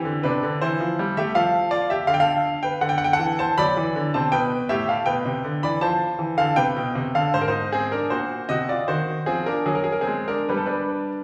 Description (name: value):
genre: classical, baroque-style suite movement for grand piano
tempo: 80 BPM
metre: 4/4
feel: rubato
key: unclear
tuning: A4 = 440 Hz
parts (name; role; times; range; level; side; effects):
- bright baby grand piano; solo; 0.0-11.2 s; Ab2 to B5; -23 LUFS; equal; none
room: wet recital hall reverb, RT60 1.6 s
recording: heard from further back in the room, studio reverb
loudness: -23 LUFS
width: mono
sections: 0.0-11.2 A section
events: none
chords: 0.0 C; 1.3 Dm/F; 2.8 D7; 4.3 G; 5.8 F; 7.3 Ab7; 10.5 G